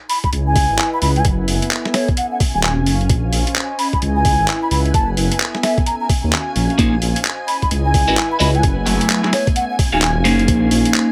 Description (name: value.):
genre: UK garage, two-step garage.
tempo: 130 BPM.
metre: 4/4.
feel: swing 62% on 16ths.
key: unclear.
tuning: A4 = 439 Hz.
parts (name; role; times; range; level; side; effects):
soft string machine; sustained chords; 0.2-11.1 s; Ab5; -33 LUFS; equal; phaser, ensemble chorus, sidechain pumping.
breathy mellow concert flute; melody; 0.1-10.1 s; Db5 to Cb6; -23 LUFS; equal; dub echo.
boom bap sampler-style drum kit; drums; 0.1-11.1 s; handclaps, hi-hat, snare drum; -24 LUFS; equal; none.
airy breathy pad; texture; 0.1-11.1 s; A3 to Ab5; -27 LUFS; equal; chorus, sidechain pumping.
electronic kick drum; drums; 0.2-10.6 s; none; -20 LUFS; equal; none.
dark detuned saw bass; bass; 0.3-10.8 s; Eb1 to Eb2; -21 LUFS; equal; sidechain pumping.
electric guitar at the edge of break-up; stabs; 6.8-11.1 s; Gb3 to F5; -19 LUFS; equal; phaser.
room: moderate small room reverb, RT60 0.5 s.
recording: none.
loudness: -17 LUFS.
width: mono.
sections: 0.0-11.1 A section.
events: none.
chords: 0.1 Dbm11; 1.2 Gbm11; 2.2 Ebm11; 3.1 Bbm11; 3.8 Dbm11; 4.9 Gbm11; 5.9 Ebm11; 6.8 Bbm11; 7.5 Dbm11; 8.6 Gbm11; 9.6 Ebm11; 10.5 Bbm11.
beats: 0.33 0.79 | 1.25 1.71 2.17 2.63 | 3.10 3.56 4.02 4.48 | 4.94 5.40 5.87 6.33 | 6.79 7.25 7.71 8.17 | 8.63 9.10 9.56 10.02 | 10.48 10.94.